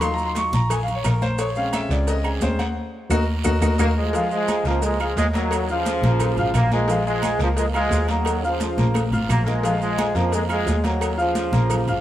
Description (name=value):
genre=latin, salsa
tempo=175 BPM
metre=4/4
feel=straight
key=Bb minor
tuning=A4 = 440 Hz
part: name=bright concert grand piano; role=accompaniment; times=0.0-12.0 s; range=F3 to F6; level=-25 LUFS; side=left 1 dB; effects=none
part: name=warm double bass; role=bass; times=0.0-12.0 s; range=Ab1 to F2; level=-23 LUFS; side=equal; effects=none
part: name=agogo bells and timbales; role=percussion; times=0.0-12.0 s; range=none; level=-33 LUFS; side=right 3 dB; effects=none
part: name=claves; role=percussion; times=0.0-11.9 s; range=none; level=-38 LUFS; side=right 8 dB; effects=none
part: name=congas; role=percussion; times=0.0-12.0 s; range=none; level=-29 LUFS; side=left 1 dB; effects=none
part: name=cowbell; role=percussion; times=0.0-11.9 s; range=none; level=-33 LUFS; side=left 4 dB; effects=none
part: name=guiro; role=percussion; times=0.0-12.0 s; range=none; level=-38 LUFS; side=right 6 dB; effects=none
part: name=maracas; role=percussion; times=0.0-12.0 s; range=none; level=-39 LUFS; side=right 5 dB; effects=none
part: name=bright trombone section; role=melody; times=3.8-12.0 s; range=Db3 to Bb3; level=-24 LUFS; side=right 1 dB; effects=none
room=moderate plate reverb, RT60 2.4 s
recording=heard from further back in the room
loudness=-19 LUFS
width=side -12 dB against mid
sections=0.0-4.1 A section; 4.1-12.0 B section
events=grand piano solo 0.0-4.1; band accent 2.8-4.1; drum fill 3.5-4.1, 8.8-9.6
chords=0.0 Ebmadd9; 1.4 Bbm7; 2.8 Ebm; 4.1 Bbm7; 5.5 Ebmadd9; 6.9 Bbm7; 8.3 Ebmadd9; 9.6 Bb7(no3); 11.0 Ebsus2